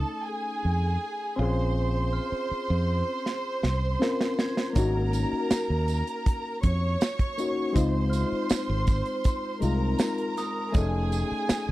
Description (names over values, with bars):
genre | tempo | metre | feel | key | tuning
lush 1970s-style soul | 80 BPM | 4/4 | straight | Db major | A4 = 439 Hz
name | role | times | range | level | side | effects
warm studio violin section | second line | 0.0-11.7 s | G#4 to Db6 | -32 LUFS | right 2 dB | none
overdriven reed electric piano | accompaniment | 0.0-11.7 s | Ab3 to Bb4 | -31 LUFS | left 3 dB | phaser
fingered electric bass | bass | 0.0-11.7 s | F1 to F2 | -26 LUFS | equal | none
glockenspiel with hard plastic mallets | texture | 0.0-11.1 s | C6 to Ab6 | -44 LUFS | right 2 dB | none
modern studio drum kit | drums | 3.3-11.7 s | hi-hat, kick drum, snare drum | -25 LUFS | right 1 dB | none
tambourine | percussion | 4.8-11.7 s | none | -42 LUFS | right 13 dB | none
room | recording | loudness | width
little or no reverb | dry, close 1970s-style studio recording | -24 LUFS | side -16 dB against mid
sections
0.0-11.7 A section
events
drum fill 3.3-4.8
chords
0.0 F7alt; 1.4 Bbm9; 4.8 Ab9sus4; 7.8 Dbmaj7; 10.7 F7alt